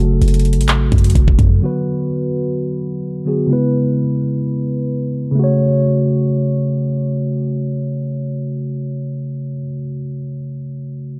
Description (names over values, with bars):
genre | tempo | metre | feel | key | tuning
hip hop, trap | 128 BPM | 4/4 | half-time | F# minor | A4 = 439 Hz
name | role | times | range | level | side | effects
mellow tine electric piano | accompaniment | 0.0-11.2 s | C#3 to C#5 | -20 LUFS | equal | subtle chorus, low-pass filter
clean 808-style bass | bass | 0.0-1.6 s | E1 to F#2 | -16 LUFS | equal | none
trap drum kit | drums | 0.2-1.5 s | handclaps, hi-hat, kick drum | -17 LUFS | equal | none
room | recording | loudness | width
light reverb, small room ambience | dark, warm production | -18 LUFS | mono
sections
0.0-5.4 A section; 5.4-9.1 B section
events
none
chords
0.0 F#m; 1.6 Bm; 3.5 C#m7; 5.4 F#m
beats
0.22 0.68 1.15 | 1.62 2.09 2.56 3.03 | 3.50 3.97 4.43 4.90 | 5.37 5.84 6.31 6.78 | 7.25 7.72 8.18 8.65